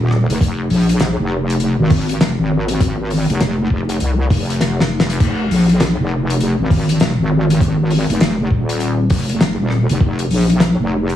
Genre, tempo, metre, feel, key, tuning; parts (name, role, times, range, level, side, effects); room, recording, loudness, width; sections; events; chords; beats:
glitch hop; 100 BPM; 4/4; swing 63% on 16ths; F minor pentatonic; A4 = 442 Hz
wobble bass; bass; 0.0-11.2 s; Eb1 to C2; -15 LUFS; equal; chorus, tube saturation
loose indie drum kit; drums; 0.1-11.1 s; crash cymbal, hi-hat, rim click, snare drum; -20 LUFS; left 1 dB
electronic kick drum; drums; 0.4-10.2 s; -16 LUFS; equal
light reverb; heavily compressed radio sound, vinyl crackle, studio reverb; -14 LUFS; side -11 dB against mid
0.0-11.2 A section
drum fill 4.6-5.2
| 0.40 1.00 1.60 2.20 | 2.80 3.40 4.00 4.60 | 5.20 5.80 6.40 7.00 | 7.60 8.20 8.80 9.40 | 10.00 10.60